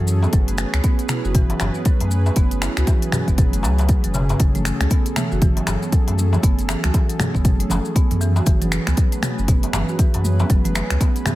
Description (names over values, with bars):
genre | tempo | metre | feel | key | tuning
afro house | 118 BPM | 4/4 | swing 60% on 16ths | F# minor | A4 = 441 Hz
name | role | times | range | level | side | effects
warm analog pad | sustained chords | 0.0-11.4 s | F#3 to B4 | -29 LUFS | equal | chorus, vintage 12-bit sampler grit, sidechain pumping
marimba with medium mallets | arpeggios | 0.0-11.4 s | C#3 to F#4 | -25 LUFS | right 2 dB | sidechain pumping, dub echo
warm sub bass | bass | 0.0-11.0 s | F#1 to F#2 | -21 LUFS | equal | sidechain pumping
maracas | percussion | 0.1-11.4 s | none | -35 LUFS | left 3 dB | none
darbuka | percussion | 0.2-11.4 s | none | -30 LUFS | left 2 dB | none
afro-pop drum kit | drums | 0.3-11.4 s | finger snaps, hi-hat, toms | -26 LUFS | left 1 dB | none
electronic kick drum | drums | 0.3-11.1 s | none | -17 LUFS | equal | overdrive
congas | percussion | 4.4-11.4 s | none | -29 LUFS | right 2 dB | none
room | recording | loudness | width
small room ambience | none | -16 LUFS | side -16 dB against mid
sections
0.0-11.4 A section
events
drum fill 4.0-4.4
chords
0.0 F#m